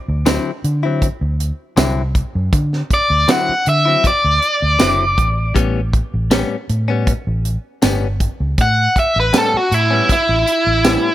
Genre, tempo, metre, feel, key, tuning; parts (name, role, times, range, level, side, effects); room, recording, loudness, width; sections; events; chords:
straight-eighth soul blues; 79 BPM; 4/4; straight; D mixolydian; A4 = 440 Hz
overdriven electric guitar; melody; 0.0-11.1 s; E4 to F#5; -14 LUFS; equal
vintage muted fingered electric bass; bass; 0.1-11.0 s; F#1 to D3; -18 LUFS; equal
direct-recorded clean electric guitar; stabs; 0.3-11.1 s; A2 to E4; -22 LUFS; left 6 dB; phaser
tight funk drum kit; drums; 0.3-11.0 s; hi-hat, kick drum, snare drum, tambourine; -17 LUFS; right 1 dB
small room ambience; -14 LUFS; side -14 dB against mid
0.0-11.1 A section
overdriven electric guitar solo 0.0-11.1
0.0 D9; 5.6 A9